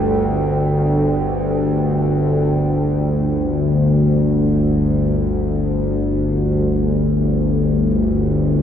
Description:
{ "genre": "ambient", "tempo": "free time", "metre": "none", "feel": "none", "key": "unclear", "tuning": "A4 = 440 Hz", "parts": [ { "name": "dark analog pad", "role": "sustained chords", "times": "0.0-2.6 s", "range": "G3 to G5", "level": "-25 LUFS", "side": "right 1 dB", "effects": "chorus" }, { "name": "bowed-like drone", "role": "drone", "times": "0.0-8.6 s", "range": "G1 to D2", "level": "-16 LUFS", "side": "left 1 dB", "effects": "built-in reverb" } ], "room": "wet huge ambient reverb, RT60 7.9 s", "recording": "worn, warbling old tape, cassette tape, warbly pitch drift", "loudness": "-15 LUFS", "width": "side -9 dB against mid", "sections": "0.0-2.6 A section; 2.6-8.6 B section", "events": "none", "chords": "0.0 G5" }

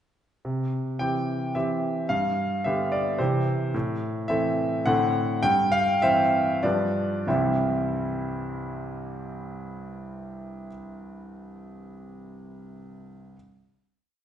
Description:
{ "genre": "classical-period piano sonatina", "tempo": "92-110 BPM", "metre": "3/4", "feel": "straight", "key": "C major", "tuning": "A4 = 440 Hz", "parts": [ { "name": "clear concert grand piano", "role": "solo", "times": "0.4-13.4 s", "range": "C2 to G5", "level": "-24 LUFS", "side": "equal", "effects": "none" } ], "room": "wet recital hall reverb, RT60 1.6 s", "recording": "heard from further back in the room, nothing above 10.8 kHz", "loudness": "-23 LUFS", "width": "side -10 dB against mid", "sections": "0.4-7.3 A section; 7.3-11.1 final chord", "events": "slowing down 2.9-7.3", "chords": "0.4 C; 2.1 G7; 3.2 C; 3.7 Am; 4.9 D7/A; 5.4 C/G; 6.6 G7; 7.3 C" }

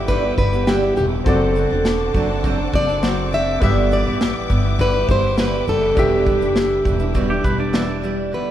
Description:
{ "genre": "acoustic pop", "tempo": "102 BPM", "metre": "4/4", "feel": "straight", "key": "G major", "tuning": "A4 = 440 Hz", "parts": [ { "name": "fingerpicked plugged-in steel-string acoustic guitar", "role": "melody", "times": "0.0-8.5 s", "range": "G4 to E5", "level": "-20 LUFS", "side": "equal", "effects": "none" }, { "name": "clear upright piano", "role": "accompaniment", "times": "0.0-8.4 s", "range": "B3 to E5", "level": "-28 LUFS", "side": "left 4 dB", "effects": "none" }, { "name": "picked steel-string acoustic guitar", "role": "accompaniment", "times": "0.0-8.5 s", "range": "E2 to A4", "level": "-23 LUFS", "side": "right 2 dB", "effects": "none" }, { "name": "dark symphonic string section", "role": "sustained chords", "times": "0.0-8.3 s", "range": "B4 to D6", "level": "-32 LUFS", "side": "left 2 dB", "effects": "none" }, { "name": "upright bass", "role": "bass", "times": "0.0-8.3 s", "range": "E1 to A1", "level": "-22 LUFS", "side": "equal", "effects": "none" }, { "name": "modern studio drum kit", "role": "drums", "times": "0.1-8.2 s", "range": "kick drum, shaker, snare drum", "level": "-22 LUFS", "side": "equal", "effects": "none" }, { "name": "pedal steel guitar", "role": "second line", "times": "7.3-8.3 s", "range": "G4 to D5", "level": "-27 LUFS", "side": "right 2 dB", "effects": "none" } ], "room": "light reverb", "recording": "none", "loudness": "-16 LUFS", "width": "side -11 dB against mid", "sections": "0.0-8.3 A section", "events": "none", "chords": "0.0 G6; 1.3 D7; 3.6 G6; 6.0 Em7" }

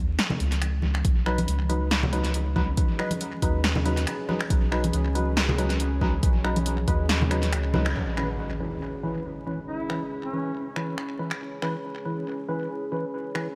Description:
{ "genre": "deep dubstep", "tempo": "139 BPM", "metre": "4/4", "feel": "swing 55% on 16ths, half-time", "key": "C# minor", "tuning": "A4 = 439 Hz", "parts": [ { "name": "soft dub sub bass", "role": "bass", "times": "0.0-7.9 s", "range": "B1 to D#2", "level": "-28 LUFS", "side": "equal", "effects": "none" }, { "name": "deep house drum kit", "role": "drums", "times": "0.2-13.4 s", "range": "finger snaps, hi-hat, snare drum", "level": "-32 LUFS", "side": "equal", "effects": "tape echo" }, { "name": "congas", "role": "percussion", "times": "0.3-7.8 s", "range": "none", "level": "-34 LUFS", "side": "equal", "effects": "tape echo" }, { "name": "electronic kick drum", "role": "drums", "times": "1.0-7.0 s", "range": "none", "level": "-27 LUFS", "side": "equal", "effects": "none" }, { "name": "deep dark ambient pad", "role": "sustained chords", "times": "2.7-13.6 s", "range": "C#4 to G#4", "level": "-38 LUFS", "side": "equal", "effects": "chorus, built-in reverb" }, { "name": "percussive organ stab", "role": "stabs", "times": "1.3-13.5 s", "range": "E3 to B4", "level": "-33 LUFS", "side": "equal", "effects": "lush chorus, dub echo" }, { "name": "impact", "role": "sound effects", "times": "8.0-9.7 s", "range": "none", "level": "-37 LUFS", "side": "equal", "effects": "none" }, { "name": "warm duduk", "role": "melody", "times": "9.7-10.5 s", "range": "C#4 to E4", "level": "-37 LUFS", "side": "equal", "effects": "tape echo" } ], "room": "light reverb", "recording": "echo-heavy mix, vinyl crackle", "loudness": "-26 LUFS", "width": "mono", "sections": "0.0-8.0 A section; 8.0-13.6 B section", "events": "band accent 7.8; impact 8.0-9.7", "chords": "0.0 N.C.; 1.1 B; 8.0 C#m7" }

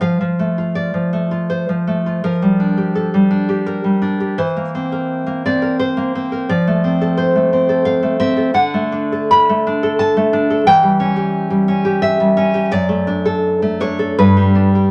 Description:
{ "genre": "romantic piece for solo classical guitar", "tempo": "75-90 BPM", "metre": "3/4", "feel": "rubato", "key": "F major, D major from 8.5 s", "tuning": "A4 = 436 Hz", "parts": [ { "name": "nylon-string guitar", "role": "solo", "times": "0.0-14.9 s", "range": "F#2 to B5", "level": "-16 LUFS", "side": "equal", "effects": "none" } ], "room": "moderate small room ambience, RT60 0.5 s", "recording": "none", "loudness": "-16 LUFS", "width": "mono", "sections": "0.0-14.9 A section", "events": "none", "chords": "0.0 F; 2.2 Gm7/F; 4.4 C7/E; 6.5 F; 8.5 D; 10.7 C#dim/E; 12.7 D/F#; 14.2 G" }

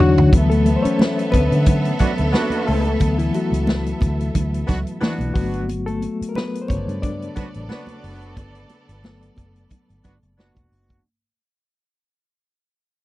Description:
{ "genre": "lush 1970s-style soul", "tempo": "90 BPM", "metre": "4/4", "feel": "swing 54% on 16ths", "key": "D major", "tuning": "A4 = 440 Hz", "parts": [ { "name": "warm symphonic violin section", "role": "second line", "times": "0.0-10.7 s", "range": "B3 to F#5", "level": "-29 LUFS", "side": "right 2 dB", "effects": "none" }, { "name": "reed electric piano", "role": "accompaniment", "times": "0.0-11.1 s", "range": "C#3 to D5", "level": "-21 LUFS", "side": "left 3 dB", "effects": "overdrive, fast tremolo" }, { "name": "vintage muted fingered electric bass", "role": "bass", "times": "0.0-11.0 s", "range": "E1 to D3", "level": "-21 LUFS", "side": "equal", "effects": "none" }, { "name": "vintage drum kit", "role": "drums", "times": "0.0-11.0 s", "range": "hi-hat, kick drum, snare drum, toms", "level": "-19 LUFS", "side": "equal", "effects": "none" }, { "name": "congas", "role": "percussion", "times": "0.3-11.0 s", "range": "none", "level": "-29 LUFS", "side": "right 3 dB", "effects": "none" }, { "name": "warm horn section", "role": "stabs", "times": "2.0-11.0 s", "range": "B3 to F#4", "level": "-28 LUFS", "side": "right 3 dB", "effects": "none" } ], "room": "little or no reverb", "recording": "dry, close 1970s-style studio recording", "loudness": "-17 LUFS", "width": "side -16 dB against mid", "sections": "0.3-11.0 A section", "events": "drum fill 0.0-0.3; fade-out 0.3-11.0; reed electric piano solo 0.3-11.0", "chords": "0.3 D6; 5.3 Gmaj9" }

